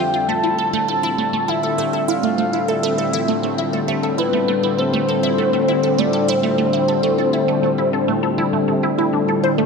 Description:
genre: ambient, sequencer-driven space music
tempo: 100 BPM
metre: 4/4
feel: straight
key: unclear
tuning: A4 = 442 Hz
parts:
  - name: soft octave-layered synth lead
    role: melody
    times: 0.0-9.3 s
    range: B4 to A5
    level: -21 LUFS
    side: left 1 dB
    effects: chorus, tremolo, tape echo
  - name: sweeping resonant pad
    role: sustained chords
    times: 0.0-9.7 s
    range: F2 to F4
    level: -21 LUFS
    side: left 2 dB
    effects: chorus
  - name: resonant blip pluck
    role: riff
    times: 0.0-9.7 s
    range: A3 to C5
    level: -22 LUFS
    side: right 3 dB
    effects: phaser, tape echo
  - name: wind-like tuned noise texture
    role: texture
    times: 0.0-9.7 s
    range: C4 to A4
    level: -28 LUFS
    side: equal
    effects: built-in reverb
room: wet concert hall reverb, RT60 2.4 s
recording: none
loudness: -16 LUFS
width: side -4 dB against mid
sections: 0.0-9.7 A section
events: none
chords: 0.3 Am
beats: | 0.29 0.89 1.49 2.09 | 2.69 3.29 3.89 4.49 | 5.09 5.69 6.29 6.89 | 7.49 8.09 8.69 9.29

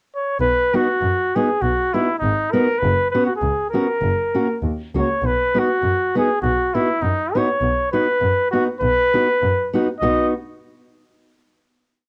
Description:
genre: alpine folk, alpine dance band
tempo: 100 BPM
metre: 2/4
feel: swing 55% on 8ths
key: B major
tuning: A4 = 440 Hz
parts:
  - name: clear flugelhorn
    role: melody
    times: 0.2-10.3 s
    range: D#4 to D#5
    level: -21 LUFS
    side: equal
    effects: none
  - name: rich double bass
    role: bass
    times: 0.4-10.1 s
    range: F#1 to F#2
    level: -26 LUFS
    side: equal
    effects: none
  - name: fingerpicked steel-string acoustic guitar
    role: accompaniment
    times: 0.7-10.3 s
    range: A#3 to F#4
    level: -23 LUFS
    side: equal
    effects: cassette tape
room: moderate studio reverb, RT60 0.7 s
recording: home recording on cassette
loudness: -19 LUFS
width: mono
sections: 0.0-0.4 pickup bar; 0.4-10.0 A section; 10.0-11.2 final chord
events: none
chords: 0.4 B; 2.8 F#sus4; 4.0 F#; 5.2 B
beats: | 0.41 1.02 | 1.62 2.22 | 2.81 3.41 | 4.01 4.62 | 5.22 5.83 | 6.43 7.03 | 7.62 8.21 | 8.82 9.42 | 10.02

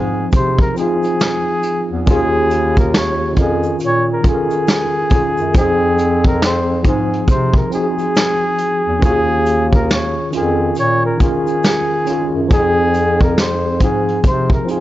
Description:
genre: lo-fi hip hop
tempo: 69 BPM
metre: 4/4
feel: swing 61% on 16ths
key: unclear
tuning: A4 = 439 Hz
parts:
  - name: breathy flugelhorn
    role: melody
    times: 0.0-14.8 s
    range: Ab4 to Db5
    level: -18 LUFS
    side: equal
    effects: none
  - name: tine electric piano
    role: accompaniment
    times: 0.0-14.8 s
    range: Eb3 to Bb4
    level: -19 LUFS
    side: equal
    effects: overdrive, fast stereo tremolo, cassette tape
  - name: mellow bass clarinet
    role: bass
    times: 0.0-14.6 s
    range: Eb2 to C3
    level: -19 LUFS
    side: equal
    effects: tube saturation
  - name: vintage brush drum kit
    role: drums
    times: 0.3-14.8 s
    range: hi-hat, kick drum, snare drum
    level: -16 LUFS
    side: equal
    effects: vintage 12-bit sampler grit
  - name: egg shaker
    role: percussion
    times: 0.3-14.8 s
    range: none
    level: -47 LUFS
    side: left 2 dB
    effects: none
room: little or no reverb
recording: dry, gritty hardware recording, nothing above 7.7 kHz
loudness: -13 LUFS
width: side -15 dB against mid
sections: 0.0-14.8 A section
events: none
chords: 0.0 Fm7; 2.1 Eb9sus4; 5.5 Fm7; 9.0 Eb9sus4; 12.5 Fm7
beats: 0.33 1.20 | 2.07 2.94 3.81 4.68 | 5.55 6.42 7.29 8.16 | 9.03 9.90 10.77 11.64 | 12.51 13.38 14.24

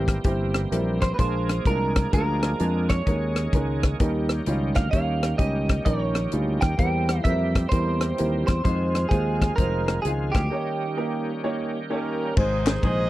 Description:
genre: uptempo gospel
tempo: 129 BPM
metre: 4/4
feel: swing 64% on 8ths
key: unclear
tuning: A4 = 440 Hz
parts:
  - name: clean electric guitar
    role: melody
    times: 0.0-12.2 s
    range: G4 to G5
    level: -29 LUFS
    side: right 2 dB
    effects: lush chorus
  - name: clear baby grand piano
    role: accompaniment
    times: 0.0-13.1 s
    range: Ab2 to Db5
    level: -28 LUFS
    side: right 1 dB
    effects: none
  - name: bright tonewheel organ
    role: sustained chords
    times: 0.0-13.1 s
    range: C3 to Ab4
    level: -32 LUFS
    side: right 2 dB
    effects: slow rotary speaker, overdrive, chorus vibrato
  - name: fingered electric bass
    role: bass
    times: 0.0-13.1 s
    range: F1 to F2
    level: -26 LUFS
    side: equal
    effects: none
  - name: tight funk drum kit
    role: drums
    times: 0.1-13.0 s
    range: crash cymbal, hi-hat, kick drum, ride cymbal, rim click, snare drum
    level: -23 LUFS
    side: equal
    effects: none
  - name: clear horn section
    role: melody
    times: 11.9-13.1 s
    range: Db4 to Eb5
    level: -28 LUFS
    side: right 1 dB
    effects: none
  - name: group handclap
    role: percussion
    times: 12.7 s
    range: none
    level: -36 LUFS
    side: left 11 dB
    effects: none
room: little or no reverb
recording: dry, close 1970s-style studio recording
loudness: -21 LUFS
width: side -16 dB against mid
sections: 0.0-12.4 A section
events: break 10.5-12.4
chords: 0.0 C7; 1.2 Bb7; 3.1 Eb7sus4; 4.0 Eb7; 6.8 C7/E; 8.6 Fm7; 10.5 Eb7; 12.4 Ab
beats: 0.25 0.72 | 1.19 1.66 2.12 2.59 | 3.06 3.53 3.99 4.46 | 4.92 5.39 5.86 6.32 | 6.79 7.25 7.72 8.18 | 8.65 9.11 9.58 10.04 | 10.51 10.97 11.44 11.91 | 12.37 12.84

